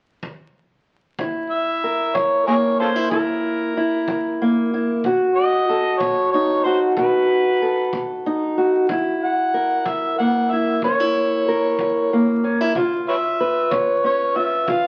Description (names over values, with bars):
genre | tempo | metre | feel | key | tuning
acoustic country blues, solo or duo | 62 BPM (dotted quarters) | 12/8 | straight | F# mixolydian | A4 = 440 Hz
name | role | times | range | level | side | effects
kick drum | drums | 0.2-14.8 s | none | -37 LUFS | equal | none
fingerpicked steel-string acoustic guitar | accompaniment | 1.2-14.9 s | F#2 to B4 | -22 LUFS | equal | none
overdriven harmonica | melody | 1.5-14.9 s | E#4 to F#5 | -23 LUFS | equal | none
room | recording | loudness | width
moderate large studio reverb, RT60 1.4 s | very old 78 rpm record, vinyl crackle | -20 LUFS | mono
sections
0.0-1.2 A section; 1.2-14.9 B section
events
none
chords
0.0 N.C.; 1.2 F#7; 5.0 B7; 8.9 F#7; 12.8 C#7